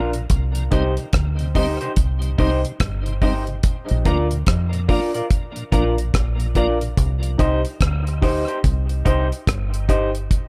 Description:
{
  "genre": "dub reggae",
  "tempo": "72 BPM",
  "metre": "4/4",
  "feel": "swing 62% on 16ths",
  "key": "C minor",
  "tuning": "A4 = 439 Hz",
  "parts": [
    { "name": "electric guitar through a small old amp", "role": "accompaniment", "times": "0.0-10.1 s", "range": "Eb4 to D5", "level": "-30 LUFS", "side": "equal", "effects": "dub echo" },
    { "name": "dark upright piano", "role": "stabs", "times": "0.0-10.1 s", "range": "D4 to Eb5", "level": "-29 LUFS", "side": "equal", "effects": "dub echo" },
    { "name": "deep dub fingered electric bass", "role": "bass", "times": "0.0-10.3 s", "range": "G1 to F2", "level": "-24 LUFS", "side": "equal", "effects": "none" },
    { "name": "tonewheel organ", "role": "accompaniment", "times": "0.1-6.9 s", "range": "Bb2 to Eb4", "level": "-33 LUFS", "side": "equal", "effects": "overdrive, chorus vibrato, slow rotary speaker, dub echo" },
    { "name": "deep reggae drum kit", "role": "drums", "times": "0.1-10.5 s", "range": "hi-hat, kick drum, rim click", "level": "-23 LUFS", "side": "equal", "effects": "none" }
  ],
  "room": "small room ambience",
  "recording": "none",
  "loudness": "-20 LUFS",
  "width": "mono",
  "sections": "0.0-3.6 A section; 3.6-10.5 A section",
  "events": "none",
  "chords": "0.3 Cm; 3.6 Bb; 7.0 Cm"
}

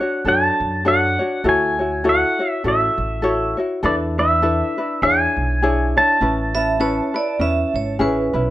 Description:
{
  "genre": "Hawaiian",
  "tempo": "101 BPM",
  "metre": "4/4",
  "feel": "swing 58% on 8ths",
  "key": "A major",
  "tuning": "A4 = 440 Hz",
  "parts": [
    { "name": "pedal steel guitar", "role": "melody", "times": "0.0-8.0 s", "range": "D5 to A5", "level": "-19 LUFS", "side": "right 1 dB", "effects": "none" },
    { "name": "ukulele", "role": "accompaniment", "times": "0.0-8.5 s", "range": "C#4 to C#5", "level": "-21 LUFS", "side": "left 2 dB", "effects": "none" },
    { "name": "upright bass", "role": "bass", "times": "0.2-8.5 s", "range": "G#1 to F#2", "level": "-24 LUFS", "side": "right 1 dB", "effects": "none" },
    { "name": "vibraphone with hard mallets", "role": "second line", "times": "6.5-8.5 s", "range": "B4 to E5", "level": "-22 LUFS", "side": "right 4 dB", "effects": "none" }
  ],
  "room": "moderate small room reverb, RT60 0.5 s",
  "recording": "rough home demo mix",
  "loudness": "-16 LUFS",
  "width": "side -14 dB against mid",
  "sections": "0.0-8.5 A section",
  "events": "none",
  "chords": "0.0 Bm9 (rootless); 1.4 Dmaj9; 3.8 E7sus4; 5.0 E6; 6.2 Amaj9"
}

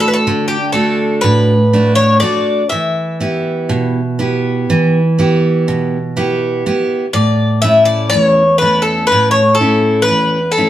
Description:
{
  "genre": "greek folk, Greek bouzouki band",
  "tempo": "122 BPM (eighths)",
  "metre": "9/8",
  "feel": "straight",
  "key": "D major",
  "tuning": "A4 = 437 Hz",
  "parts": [
    { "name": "Greek bouzouki", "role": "melody", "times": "0.0-10.7 s", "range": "G4 to E5", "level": "-13 LUFS", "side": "left 2 dB", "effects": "none" },
    { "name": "picked steel-string acoustic guitar", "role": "accompaniment", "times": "0.0-10.7 s", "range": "E2 to G4", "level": "-14 LUFS", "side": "right 1 dB", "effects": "none" }
  ],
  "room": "moderate large studio reverb, RT60 0.9 s",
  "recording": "band playing live in one room",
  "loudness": "-11 LUFS",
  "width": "side -12 dB against mid",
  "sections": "0.0-10.7 A section",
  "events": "none",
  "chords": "0.0 D; 2.7 Em; 7.1 A"
}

